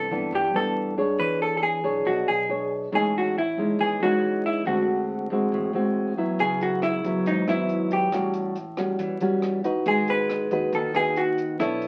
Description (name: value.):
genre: bossa nova.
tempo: 138 BPM.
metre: 4/4.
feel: straight.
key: unclear.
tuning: A4 = 440 Hz.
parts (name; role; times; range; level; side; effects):
vintage hollow-body jazz guitar; melody; 0.0-11.9 s; D#4 to B4; -27 LUFS; equal; none.
nylon-string guitar; accompaniment; 0.0-11.9 s; G2 to C#5; -27 LUFS; equal; none.
upright bass; bass; 0.0-11.9 s; G#1 to G2; -42 LUFS; equal; none.
compact cocktail drum kit; drums; 6.4-11.9 s; hi-hat, kick drum, rim click; -43 LUFS; equal; none.
room: wet studio reverb, RT60 0.6 s.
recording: very old 78 rpm record, vinyl crackle.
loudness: -24 LUFS.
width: mono.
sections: 0.0-11.9 A section.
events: none.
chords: 0.0 Cmaj9; 1.2 E6; 2.9 Amaj7#11; 4.7 D7#11; 6.4 C#m7; 8.1 A13; 9.9 G#m7.